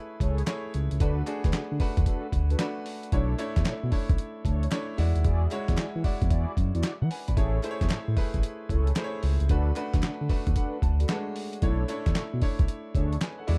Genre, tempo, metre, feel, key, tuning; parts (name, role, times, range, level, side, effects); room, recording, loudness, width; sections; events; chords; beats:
R&B, new jack swing; 113 BPM; 4/4; swing 66% on 16ths; A4 = 439 Hz
bright baby grand piano; accompaniment; 0.0-13.6 s; G#3 to B5; -37 LUFS; equal
mellow synth brass; stabs; 0.2-13.2 s; D4 to D5; -40 LUFS; equal; chorus, tape echo
smooth gliding synth bass; bass; 0.2-13.6 s; G#1 to E3; -28 LUFS; equal
dusty soul sampler-style drum kit; drums; 0.2-13.6 s; handclaps, hi-hat, kick drum, snare drum; -30 LUFS; equal
group handclap; percussion; 0.5-13.4 s; -48 LUFS; equal
little or no reverb; dark, warm production; -27 LUFS; mono
0.0-13.6 A section
grand piano fill 10.0-11.6
0.0 Amaj7; 1.0 D6; 3.1 Bm11; 5.0 E9; 7.4 Amaj7; 9.5 D6; 11.6 Bm11
0.47 | 1.00 1.53 2.06 2.60 | 3.13 3.66 4.19 4.72 | 5.25 5.78 6.31 6.84 | 7.37 7.91 8.44 8.97 | 9.50 10.03 10.56 11.09 | 11.62 12.15 12.68 13.21